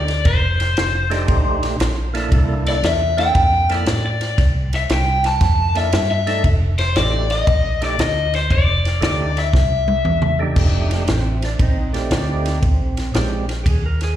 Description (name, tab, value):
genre	electric blues shuffle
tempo	116 BPM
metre	4/4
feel	swing 67% on 8ths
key	F mixolydian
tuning	A4 = 440 Hz
part	raw garage guitar	melody	0.0-10.4 s	C5 to A5	-20 LUFS	left 2 dB	overdrive, phaser, slapback echo, tape echo
part	percussive tonewheel organ	accompaniment	0.0-14.2 s	F2 to D5	-25 LUFS	right 4 dB	slow rotary speaker, overdrive, slapback echo
part	vintage muted fingered electric bass	bass	0.0-14.2 s	F1 to A2	-19 LUFS	equal	none
part	compact cocktail drum kit	drums	0.1-14.1 s	crash cymbal, kick drum, ride cymbal, snare drum, toms	-21 LUFS	equal	none
room	light reverb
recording	live gig heard through the venue's PA, recital hall reverb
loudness	-15 LUFS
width	side -11 dB against mid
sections	0.0-10.6 A section; 10.6-14.2 B section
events	drum fill 9.5-10.6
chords	0.0 F13; 2.3 C13; 6.4 F13; 9.5 C69; 10.6 F13; 12.6 Bb13